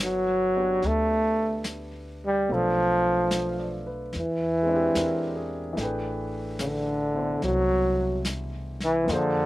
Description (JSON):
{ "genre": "jazz ballad", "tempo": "73 BPM", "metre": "4/4", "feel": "swing 67% on 8ths", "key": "unclear", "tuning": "A4 = 442 Hz", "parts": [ { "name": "bright trombone", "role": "melody", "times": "0.0-9.5 s", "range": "C#3 to A3", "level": "-24 LUFS", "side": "equal", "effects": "none" }, { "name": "warm concert grand piano", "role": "accompaniment", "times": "0.0-9.5 s", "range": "B2 to G5", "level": "-33 LUFS", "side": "left 1 dB", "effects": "slapback echo" }, { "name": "upright bass", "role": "bass", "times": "0.0-9.5 s", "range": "G1 to F2", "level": "-34 LUFS", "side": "equal", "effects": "none" }, { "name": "vintage brush drum kit", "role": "drums", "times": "0.8-9.5 s", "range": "brushed snare drum, hi-hat, snare drum", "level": "-32 LUFS", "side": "left 1 dB", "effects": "none" } ], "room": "little or no reverb", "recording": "recorded outdoors, with no room sound", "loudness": "-23 LUFS", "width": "side -16 dB against mid", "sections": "0.0-9.5 A section", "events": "none", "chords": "0.0 Gmaj9; 2.5 Bm7b5; 4.1 E7alt; 5.8 Am11" }